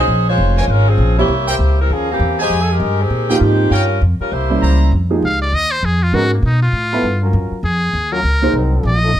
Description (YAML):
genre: jazz, big band swing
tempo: 198 BPM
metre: 4/4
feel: swing 62% on 8ths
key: F minor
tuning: A4 = 440 Hz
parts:
  - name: warm saxophone section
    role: melody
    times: 0.0-4.8 s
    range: Eb3 to Eb5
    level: -18 LUFS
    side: left 1 dB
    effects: none
  - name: upright bass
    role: bass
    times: 0.0-9.2 s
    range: F1 to Cb3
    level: -15 LUFS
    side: equal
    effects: none
  - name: bright trumpet section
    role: stabs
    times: 0.6-4.9 s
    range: Ab4 to Bb5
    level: -22 LUFS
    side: right 2 dB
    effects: none
  - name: warm concert grand piano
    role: accompaniment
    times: 1.2-1.3, 3.3-8.5 s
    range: F3 to C5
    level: -18 LUFS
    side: right 3 dB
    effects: none
  - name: warm trombone section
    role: sustained chords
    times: 5.1-9.1 s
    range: F3 to Bb4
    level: -24 LUFS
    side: left 2 dB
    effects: none
  - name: trumpet with metal mute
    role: melody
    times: 5.2-9.2 s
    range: Bb3 to F5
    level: -18 LUFS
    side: equal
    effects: none
room: little or no reverb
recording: close, detailed microphones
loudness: -13 LUFS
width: side -11 dB against mid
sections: 0.0-4.9 A section; 4.9-9.2 B section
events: muted trumpet solo 4.9-9.2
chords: 0.1 Bbm9; 1.3 C7; 2.5 Fm9; 3.7 Gm7b5; 4.3 C7b9; 4.9 Fm9; 6.1 Abm9; 6.7 Db7alt; 7.3 Gbmaj7; 8.5 Cm7b5